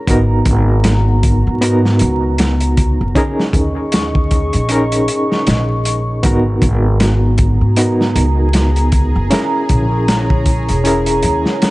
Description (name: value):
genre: trip hop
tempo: 78 BPM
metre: 4/4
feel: swing 58% on 16ths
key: G# minor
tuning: A4 = 439 Hz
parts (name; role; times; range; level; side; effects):
- overdriven reed electric piano; accompaniment; 0.0-11.7 s; B3 to A#4; -18 LUFS; equal; medium tremolo, tape echo
- dark analog pad; sustained chords; 0.0-11.7 s; B3 to C#6; -21 LUFS; right 1 dB; chorus, phaser
- upright bass; bass; 0.1-11.4 s; E1 to G#2; -15 LUFS; equal; none
- crunchy breakbeat drum kit; drums; 0.1-11.7 s; hi-hat, kick drum, snare drum; -16 LUFS; equal; none
- bowed-like drone; texture; 7.7-11.7 s; G#4; -30 LUFS; right 1 dB; built-in reverb
room: studio ambience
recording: vinyl crackle, nothing above 10.5 kHz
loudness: -12 LUFS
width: side -19 dB against mid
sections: 0.0-11.7 A section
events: none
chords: 0.1 G#m9; 3.2 D#7sus4; 6.2 G#m9; 9.3 A#m7b5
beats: | 0.08 0.85 1.62 2.39 | 3.15 3.92 4.69 5.46 | 6.23 7.00 7.77 8.54 | 9.31 10.08 10.85 11.62